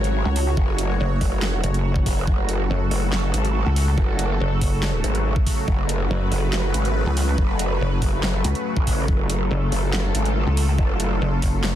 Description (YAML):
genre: heavy wobble dubstep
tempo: 141 BPM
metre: 4/4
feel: half-time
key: F# harmonic minor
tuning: A4 = 440 Hz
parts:
  - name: lush unison pad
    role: sustained chords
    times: 0.0-11.8 s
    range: C#3 to C#5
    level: -26 LUFS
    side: equal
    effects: chorus, phaser, sidechain pumping
  - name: growl bass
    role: bass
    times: 0.0-11.2 s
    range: F#1 to A1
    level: -23 LUFS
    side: equal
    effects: chorus, overdrive
  - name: dubstep drum kit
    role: drums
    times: 0.0-11.7 s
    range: handclaps, hi-hat, snare drum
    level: -29 LUFS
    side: right 1 dB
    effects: none
  - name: pulsing pluck wobble bass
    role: bass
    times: 0.3-11.8 s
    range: F#1 to C#2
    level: -21 LUFS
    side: equal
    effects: chorus, overdrive
  - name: electronic kick drum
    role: drums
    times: 0.6-11.5 s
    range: none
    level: -21 LUFS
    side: equal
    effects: overdrive
room: little or no reverb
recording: dense, heavily limited modern master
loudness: -19 LUFS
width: side -11 dB against mid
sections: 0.0-11.8 A section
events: none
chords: 0.0 F#m